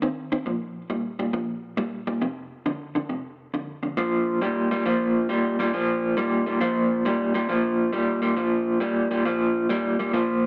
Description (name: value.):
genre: blues.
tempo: 137 BPM.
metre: 4/4.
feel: swing 67% on 8ths.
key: Bb major.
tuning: A4 = 437 Hz.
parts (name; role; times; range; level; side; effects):
electric guitar through a small old amp; solo; 0.0-10.5 s; F2 to C4; -25 LUFS; equal; tremolo.
room: wet spring reverb, RT60 1.7 s, digital ambience.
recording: none.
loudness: -25 LUFS.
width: mono.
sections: 0.0-4.0 A section; 4.0-10.5 B section.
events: none.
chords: 0.5 Bb5; 2.2 F5; 4.0 Bb5.